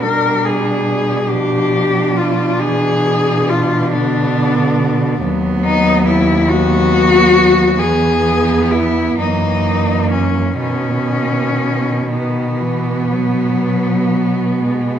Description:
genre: classical, lyrical piece for cello ensemble.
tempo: 39-47 BPM (dotted quarters).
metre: 12/8.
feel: rubato.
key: unclear.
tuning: A4 = 439 Hz.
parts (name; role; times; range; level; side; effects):
rich cello; melody; 0.0-15.0 s; B3 to A#4; -16 LUFS; left 4 dB; none.
warm cello; second line; 0.0-15.0 s; A#3 to D4; -20 LUFS; right 6 dB; none.
dark cello; accompaniment; 0.0-15.0 s; D3 to G#3; -20 LUFS; left 2 dB; none.
dark cello; bass; 0.0-15.0 s; D#2 to B2; -19 LUFS; right 2 dB; none.
room: wet recital hall reverb, RT60 1.6 s.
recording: none.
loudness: -13 LUFS.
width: side -9 dB against mid.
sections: 0.0-15.0 A section.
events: none.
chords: 0.0 Bdim7; 5.2 B/D#; 7.8 E; 9.2 F#7; 10.6 B.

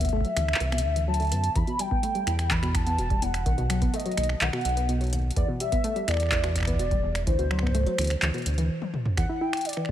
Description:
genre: IDM.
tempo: 126 BPM.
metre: 4/4.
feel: straight.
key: E minor.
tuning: A4 = 438 Hz.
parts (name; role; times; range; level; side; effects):
warbly nostalgic lead; melody; 0.0-9.9 s; C5 to B5; -30 LUFS; equal; tremolo, analog chorus, tape echo.
warbly dusty pluck; arpeggios; 0.0-9.9 s; D#2 to E4; -31 LUFS; left 1 dB; chorus, dub echo.
round analog bass; bass; 0.0-9.9 s; E1 to F#2; -27 LUFS; equal; tube saturation.
electro analog drum machine; drums; 0.0-9.9 s; finger snaps, handclaps, hi-hat, toms; -31 LUFS; equal; none.
electronic kick drum; drums; 0.0-9.9 s; none; -27 LUFS; equal; none.
room: light reverb, digital ambience.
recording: none.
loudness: -23 LUFS.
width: side -11 dB against mid.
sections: 0.0-9.2 A section.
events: stop 8.7-9.2; drum fill 8.8-9.2.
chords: 0.0 D7; 1.6 Emadd11; 3.5 B; 5.4 E7(no3); 7.3 D7(no3); 9.2 Em7.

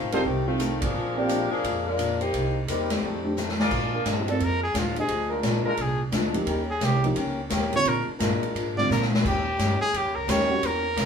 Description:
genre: jazz, big band swing.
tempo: 174 BPM.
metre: 4/4.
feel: swing 64% on 8ths.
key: Bb mixolydian.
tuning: A4 = 441 Hz.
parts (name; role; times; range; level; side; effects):
warm saxophone section; melody; 0.0-3.4 s; Eb3 to C5; -27 LUFS; left 2 dB; none.
picked steel-string acoustic guitar; accompaniment; 0.0-11.1 s; F2 to G4; -31 LUFS; left 4 dB; none.
upright bass; bass; 0.0-11.1 s; E1 to Bb2; -30 LUFS; right 1 dB; none.
dark concert grand piano; accompaniment; 0.1-10.6 s; D3 to Eb5; -29 LUFS; right 3 dB; none.
clear trumpet section; stabs; 0.1-0.2, 3.6-4.0 s; Eb4 to D5; -28 LUFS; right 2 dB; none.
swinging big-band drum kit; drums; 0.1-11.1 s; crash cymbal, hi-hat, kick drum, ride cymbal, snare drum; -29 LUFS; left 1 dB; none.
clear trombone section; sustained chords; 3.9-10.6 s; G3 to Bb4; -30 LUFS; equal; none.
brilliant trumpet; melody; 4.3-11.1 s; F4 to D5; -26 LUFS; right 1 dB; none.
room: wet studio ambience, RT60 0.5 s.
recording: band playing live in one room, small room ambience.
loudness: -22 LUFS.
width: side -7 dB against mid.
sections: 0.0-3.7 A section; 3.7-11.1 B section.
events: band accent 0.8, 2.8; drum fill 3.4-3.7, 8.9-9.2; trumpet solo 3.7-11.1.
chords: 0.0 F7; 0.9 Bb7; 2.3 Cm7; 3.0 F13; 3.7 Bb7; 6.5 Eb7; 7.9 Bb7; 9.2 Eb7.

